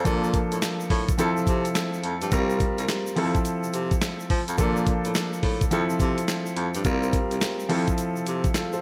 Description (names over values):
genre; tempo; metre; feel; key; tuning
R&B, new jack swing; 106 BPM; 4/4; swing 64% on 16ths; F major; A4 = 440 Hz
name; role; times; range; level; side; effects
clear baby grand piano; accompaniment; 0.0-8.8 s; F3 to C5; -28 LUFS; equal; none
warm baritone saxophone; bass; 0.0-8.5 s; C2 to F3; -31 LUFS; equal; none
dusty soul sampler-style drum kit; drums; 0.1-8.7 s; handclaps, hi-hat, kick drum, snare drum; -29 LUFS; equal; gated reverb
tube shaker; percussion; 0.1-8.8 s; none; -43 LUFS; equal; none
room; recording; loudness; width
light reverb; none; -25 LUFS; mono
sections
0.0-8.8 A section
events
none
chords
0.1 Bbmaj7; 1.2 Fmaj7; 2.3 C7sus4; 3.2 Fmaj7; 4.6 Bbmaj7; 5.7 Fmaj7; 6.8 C7sus4; 7.7 Fmaj7